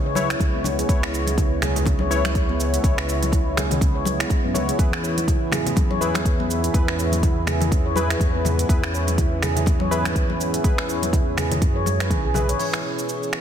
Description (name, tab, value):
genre	afro house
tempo	123 BPM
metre	4/4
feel	swing 57% on 16ths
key	unclear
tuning	A4 = 441 Hz
part	warm analog pad	sustained chords	0.0-13.4 s	G#2 to G#4	-30 LUFS	right 1 dB	chorus, sidechain pumping
part	warm analog keys	stabs	0.0-13.4 s	E4 to C#5	-28 LUFS	left 2 dB	chorus, sidechain pumping, tape echo
part	smooth gliding synth bass	bass	0.0-12.5 s	B1 to F#2	-26 LUFS	equal	sidechain pumping
part	handpan	arpeggios	0.1-12.6 s	B3 to C#5	-27 LUFS	right 2 dB	vintage 12-bit sampler grit, sidechain pumping, tape echo
part	afro-pop drum kit	drums	0.2-13.4 s	crash cymbal, finger snaps, hi-hat, shaker, toms	-28 LUFS	right 2 dB	soft clipping on snare
part	congas	percussion	0.2-12.5 s	none	-30 LUFS	left 4 dB	none
part	electronic kick drum	drums	0.4-12.2 s	none	-20 LUFS	equal	none
room	light reverb, digital ambience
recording	dense, heavily limited modern master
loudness	-19 LUFS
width	side -9 dB against mid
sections	0.0-12.6 A section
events	none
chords	0.0 C#m7; 4.8 E; 12.6 C#m7